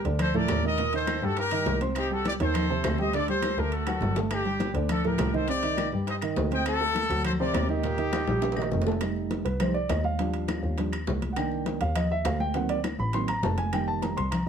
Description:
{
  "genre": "latin, salsa",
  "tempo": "204 BPM",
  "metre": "4/4",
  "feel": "straight",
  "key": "unclear",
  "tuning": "A4 = 442 Hz",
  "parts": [
    { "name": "bright trumpet section", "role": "melody", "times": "0.0-8.7 s", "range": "D4 to G5", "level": "-29 LUFS", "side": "left 2 dB", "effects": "plate reverb" },
    { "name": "rich double bass", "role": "bass", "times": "0.0-14.5 s", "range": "F1 to G2", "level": "-30 LUFS", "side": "left 1 dB", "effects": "none" },
    { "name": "bongos", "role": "percussion", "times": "0.0-14.5 s", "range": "none", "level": "-38 LUFS", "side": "left 8 dB", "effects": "none" },
    { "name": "congas", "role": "percussion", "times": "0.0-14.5 s", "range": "none", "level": "-34 LUFS", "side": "equal", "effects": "none" },
    { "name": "dark concert grand piano", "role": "accompaniment", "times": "0.1-14.5 s", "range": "A2 to C6", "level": "-29 LUFS", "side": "right 3 dB", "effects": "none" },
    { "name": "timbales", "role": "percussion", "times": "0.1-14.5 s", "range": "none", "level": "-38 LUFS", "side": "right 6 dB", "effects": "none" },
    { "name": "claves", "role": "percussion", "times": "0.2-14.5 s", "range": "none", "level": "-43 LUFS", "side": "left 4 dB", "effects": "none" }
  ],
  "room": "moderate studio reverb, RT60 0.8 s",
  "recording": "none",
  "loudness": "-24 LUFS",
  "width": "side -7 dB against mid",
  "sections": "0.0-9.0 A section; 9.0-14.5 B section",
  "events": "drum fill 3.6-4.3, 8.1-9.0; grand piano solo 9.0-14.5",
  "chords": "0.0 Gmadd9 (rootless); 0.8 Eb; 2.0 Cm; 3.1 Dsus4; 3.7 D; 4.3 Gmadd9; 5.5 Cm; 6.7 D7; 7.8 Eb; 9.0 F9; 10.2 Ebmaj7; 11.4 Cm7; 12.6 D7b9b13; 13.7 F7sus4"
}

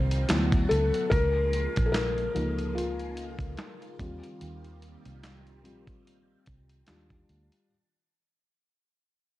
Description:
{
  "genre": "lo-fi hip hop",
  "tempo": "73 BPM",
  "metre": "4/4",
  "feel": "swing 56% on 16ths",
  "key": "Eb mixolydian",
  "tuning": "A4 = 444 Hz",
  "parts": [
    { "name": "felt-muted upright piano", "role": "accompaniment", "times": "0.0-7.7 s", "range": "F3 to C5", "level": "-29 LUFS", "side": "left 2 dB", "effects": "cassette tape" },
    { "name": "phased string machine", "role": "sustained chords", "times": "0.0-7.7 s", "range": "Db3 to F#4", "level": "-41 LUFS", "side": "right 2 dB", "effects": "ensemble chorus, phaser" },
    { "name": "vintage muted fingered electric bass", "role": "bass", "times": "0.0-7.5 s", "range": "Bb1 to Eb2", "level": "-30 LUFS", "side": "right 1 dB", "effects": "none" },
    { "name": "dusty soul sampler-style drum kit", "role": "drums", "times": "0.1-7.7 s", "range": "handclaps, hi-hat, kick drum, snare drum", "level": "-30 LUFS", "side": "right 1 dB", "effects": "none" }
  ],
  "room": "light reverb",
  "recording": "cassette tape",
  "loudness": "-25 LUFS",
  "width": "side -16 dB against mid",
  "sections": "0.0-7.7 A section",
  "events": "fade-out 0.0-7.7; felt piano solo 0.0-7.7",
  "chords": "0.3 D6; 1.1 Db6; 4.0 Eb69; 6.9 Ebmaj9"
}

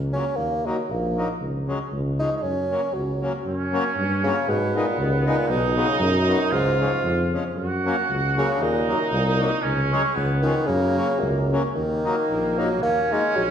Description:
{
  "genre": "alpine folk, alpine dance band",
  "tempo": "116 BPM",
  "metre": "2/4",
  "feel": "swing 54% on 8ths, rubato",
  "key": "F# major",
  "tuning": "A4 = 440 Hz",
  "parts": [
    { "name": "mellow tuba", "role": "bass", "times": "0.0-13.5 s", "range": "A#1 to G#2", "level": "-25 LUFS", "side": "equal", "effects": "none" },
    { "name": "mellow bassoon", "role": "melody", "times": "0.1-13.5 s", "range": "D#2 to D#4", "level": "-24 LUFS", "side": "equal", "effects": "none" },
    { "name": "accordion", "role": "accompaniment", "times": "0.1-13.2 s", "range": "E#3 to D#4", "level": "-28 LUFS", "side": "left 3 dB", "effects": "none" },
    { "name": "warm trumpet", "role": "second line", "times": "3.5-13.5 s", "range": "Bb3 to F#4", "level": "-26 LUFS", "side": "right 3 dB", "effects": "none" }
  ],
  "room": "wet recital hall reverb, RT60 1.7 s",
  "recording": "recorded in a church or concert hall",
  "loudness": "-20 LUFS",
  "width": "side -8 dB against mid",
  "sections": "0.0-3.5 A section; 3.5-11.8 A section; 11.8-13.5 B section",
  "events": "none",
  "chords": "0.4 D#m; 1.4 C#sus4; 1.9 C#; 2.4 F#; 4.5 G#m; 5.5 B; 6.5 C#; 7.6 F#; 8.6 D#m; 9.6 C#sus4; 10.2 C#; 10.7 F#; 11.8 Ebm"
}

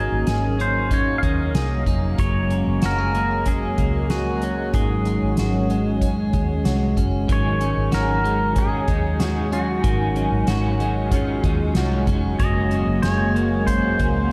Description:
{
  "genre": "dream pop",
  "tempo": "94 BPM",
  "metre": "4/4",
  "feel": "straight",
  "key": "unclear",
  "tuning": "A4 = 441 Hz",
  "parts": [
    { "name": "pedal steel guitar", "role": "melody", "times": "0.0-14.3 s", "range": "Gb4 to F5", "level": "-29 LUFS", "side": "equal", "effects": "delay" },
    { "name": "phased analog pad", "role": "sustained chords", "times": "0.0-14.3 s", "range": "Gb3 to Db4", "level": "-28 LUFS", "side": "equal", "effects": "phaser, chorus" },
    { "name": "clean electric guitar", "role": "arpeggios", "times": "0.0-14.3 s", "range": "Eb3 to Ab4", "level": "-28 LUFS", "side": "equal", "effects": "lush chorus, delay" },
    { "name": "vintage muted fingered electric bass", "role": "bass", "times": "0.0-14.3 s", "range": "F1 to Eb2", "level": "-26 LUFS", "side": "equal", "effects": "none" },
    { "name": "soft-mallet drum kit", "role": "drums", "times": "0.3-14.1 s", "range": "hi-hat, kick drum, snare drum", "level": "-27 LUFS", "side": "equal", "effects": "none" },
    { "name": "electric guitar at the edge of break-up", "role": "accompaniment", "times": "7.3-14.3 s", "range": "Ab2 to Ab4", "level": "-32 LUFS", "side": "equal", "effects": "tremolo, analog chorus" }
  ],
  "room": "wet lush hall reverb, RT60 2.1 s",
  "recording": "dreamy mix soaked in reverb",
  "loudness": "-21 LUFS",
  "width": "mono",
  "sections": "0.0-7.3 A section; 7.3-14.3 A section",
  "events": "none",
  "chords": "0.0 Ab7sus4; 2.2 Gbadd9; 4.7 Ab7sus4; 12.4 Gbadd9"
}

